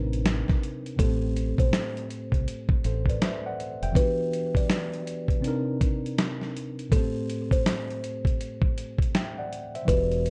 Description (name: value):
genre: lo-fi hip hop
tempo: 81 BPM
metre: 4/4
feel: swing 63% on 16ths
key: A dorian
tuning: A4 = 440 Hz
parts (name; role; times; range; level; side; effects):
- mellow tine electric piano; accompaniment; 0.0-10.3 s; A2 to G5; -34 LUFS; equal; none
- deep dub fingered electric bass; bass; 0.0-3.9, 9.9-10.3 s; E1 to C2; -30 LUFS; equal; none
- dusty soul sampler-style drum kit; drums; 0.1-10.3 s; hi-hat, kick drum, snare drum; -27 LUFS; equal; vintage 12-bit sampler grit
- buzzing kalimba; melody; 1.0-10.3 s; A4 to D5; -35 LUFS; equal; tape echo
room: light reverb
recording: dark, warm production, nothing above 10.3 kHz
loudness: -27 LUFS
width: mono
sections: 0.0-10.3 A section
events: none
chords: 0.0 Cm9; 1.0 Am9; 3.9 Em9; 5.4 Cm9; 6.9 Am7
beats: 0.24 | 0.98 1.73 2.47 3.21 | 3.95 4.69 5.43 6.17 | 6.91 7.65 8.39 9.13 | 9.87